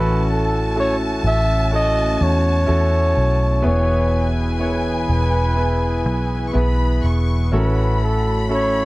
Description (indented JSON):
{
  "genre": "pop ballad",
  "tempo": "62 BPM",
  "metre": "4/4",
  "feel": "straight",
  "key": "unclear",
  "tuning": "A4 = 439 Hz",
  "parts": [
    { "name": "breathy flugelhorn", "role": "melody", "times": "0.0-8.8 s", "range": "A4 to E5", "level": "-22 LUFS", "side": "equal", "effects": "plate reverb" },
    { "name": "warm studio violin section", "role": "second line", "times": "0.0-8.8 s", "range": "G#5 to C#6", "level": "-28 LUFS", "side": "equal", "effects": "plate reverb" },
    { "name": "clear concert grand piano", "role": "accompaniment", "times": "0.0-8.8 s", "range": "A2 to C#5", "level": "-24 LUFS", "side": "equal", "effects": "plate reverb" },
    { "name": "warm analog pad", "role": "sustained chords", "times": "0.0-8.8 s", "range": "E3 to B4", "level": "-28 LUFS", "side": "left 1 dB", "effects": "chorus" },
    { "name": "vintage muted fingered electric bass", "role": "bass", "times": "0.0-8.8 s", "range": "E1 to E2", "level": "-19 LUFS", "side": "equal", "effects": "none" }
  ],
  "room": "light reverb",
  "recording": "dark, warm production",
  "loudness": "-16 LUFS",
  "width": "side -20 dB against mid",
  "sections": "0.0-8.8 A section",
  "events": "none",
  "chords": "0.0 A6; 3.6 E; 7.5 A6"
}